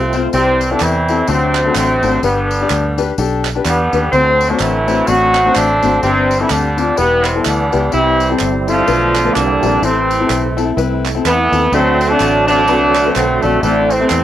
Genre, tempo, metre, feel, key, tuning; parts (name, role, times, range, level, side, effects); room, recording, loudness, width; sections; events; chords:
uptempo gospel; 126 BPM; 4/4; swing 58% on 8ths; C major; A4 = 435 Hz
clear horn section; melody; 0.0-14.2 s; C3 to F#4; -14 LUFS; right 1 dB; cassette tape
tonewheel organ; sustained chords; 0.0-0.4, 7.9-14.2 s; D3 to F#4; -21 LUFS; right 9 dB; slow rotary speaker, overdrive, chorus vibrato, cassette tape
fingered electric bass; bass; 0.0-14.2 s; E1 to E2; -20 LUFS; right 1 dB
clear grand piano; accompaniment; 0.1-14.2 s; G2 to D5; -18 LUFS; left 7 dB; cassette tape
tambourine and handclaps; percussion; 0.1-14.2 s; -24 LUFS; right 5 dB
light reverb; home recording on cassette; -11 LUFS; side -12 dB against mid
0.3-14.2 A section
0.3 C; 1.3 D7; 2.2 G; 4.1 D7; 6.0 Gsus4; 7.0 Em; 7.9 C; 8.9 Bm7b5; 9.4 C9; 9.8 Am; 11.7 D7; 13.6 Am